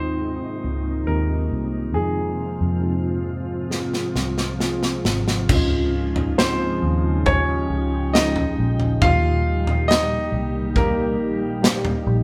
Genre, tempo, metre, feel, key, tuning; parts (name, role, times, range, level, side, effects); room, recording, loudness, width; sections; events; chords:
pop ballad; 68 BPM; 4/4; straight; A4 = 441 Hz
clear baby grand piano; melody; 0.0-12.0 s; Bb3 to F5; -27 LUFS; equal
tine electric piano; accompaniment; 0.0-12.2 s; Ab2 to Ab4; -29 LUFS; equal
glassy FM pad; sustained chords; 0.0-12.2 s; Ab2 to G5; -30 LUFS; equal; ensemble chorus, built-in reverb
vintage muted fingered electric bass; bass; 0.0-12.2 s; Ab1 to F2; -26 LUFS; equal
natural country drum kit; drums; 3.7-12.0 s; crash cymbal, kick drum, snare drum, toms; -24 LUFS; equal
moderate stone room reverb, RT60 1.0 s; band playing live in one room; -21 LUFS; mono
0.0-5.5 A section; 5.5-12.2 B section
drum fill 3.7-5.5
0.0 Ab/Eb; 2.0 Fm; 5.5 Dbadd9; 9.0 Eb